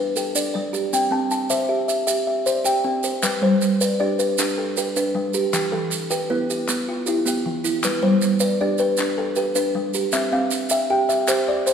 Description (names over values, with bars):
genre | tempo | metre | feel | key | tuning
southern african traditional, mbira-style interlocking cycle | 104 BPM (dotted quarters) | 12/8 | straight | G mixolydian | A4 = 440 Hz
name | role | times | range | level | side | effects
kalimba | arpeggios | 0.0-11.7 s | E3 to A5 | -22 LUFS | left 4 dB | none
kalimba | arpeggios | 0.0-11.7 s | E3 to G5 | -23 LUFS | right 4 dB | none
maracas | percussion | 0.2-11.7 s | none | -28 LUFS | right 6 dB | none
group handclap | percussion | 3.2-11.7 s | none | -30 LUFS | left 3 dB | none
room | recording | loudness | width
wet scoring stage reverb, RT60 1.8 s | recorded in a church or concert hall | -19 LUFS | side -7 dB against mid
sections
0.0-3.2 A section; 3.2-11.7 B section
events
none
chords
0.0 G; 0.9 C; 3.2 G; 5.5 Em; 7.8 G; 10.1 C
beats
0.35 | 0.93 1.51 2.08 2.66 | 3.24 3.81 4.39 4.96 | 5.54 6.11 6.69 7.26 | 7.84 8.41 8.98 9.56 | 10.13 10.71 11.28